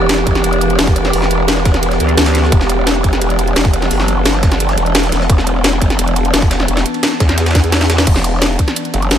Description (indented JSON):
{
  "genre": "dark technical drum and bass",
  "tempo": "173 BPM",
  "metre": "4/4",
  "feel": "straight",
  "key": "E minor",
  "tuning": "A4 = 440 Hz",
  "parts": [
    { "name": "metallic inharmonic drone", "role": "sustained chords", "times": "0.0-8.0 s", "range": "E3 to G4", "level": "-18 LUFS", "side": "equal", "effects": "chorus, built-in reverb, sidechain pumping" },
    { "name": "growl bass", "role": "bass", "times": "0.0-9.2 s", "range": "E1 to E2", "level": "-15 LUFS", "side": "equal", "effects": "chorus, overdrive" },
    { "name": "breakbeat sampler-style drum kit", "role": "drums", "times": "0.1-9.2 s", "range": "hi-hat, ride cymbal, snare drum", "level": "-24 LUFS", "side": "right 1 dB", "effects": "high-pass filter on snare, high-pass filter on cymbals, high-pass filter on hats" },
    { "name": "drum and bass drum kit", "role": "drums", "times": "0.1-9.2 s", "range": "crash cymbal, hi-hat, snare drum", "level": "-17 LUFS", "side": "left 1 dB", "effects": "overdrive" },
    { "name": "electronic kick drum", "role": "drums", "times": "0.3-8.7 s", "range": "none", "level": "-13 LUFS", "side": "equal", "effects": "overdrive" }
  ],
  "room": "light reverb",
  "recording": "none",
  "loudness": "-11 LUFS",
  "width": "side -10 dB against mid",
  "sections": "0.0-8.1 A section; 8.1-9.2 A section",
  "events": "drop 0.0-8.1, 8.1-9.2; drum fill 7.5-8.1",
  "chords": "0.0 Em; 8.1 N.C.",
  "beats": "0.09 0.44 0.79 | 1.13 1.48 1.83 2.17 | 2.52 2.87 3.21 3.56 | 3.91 4.25 4.60 4.95 | 5.30 5.64 5.99 6.34 | 6.68 7.03 7.38 7.72 | 8.07 8.42 8.76 9.11"
}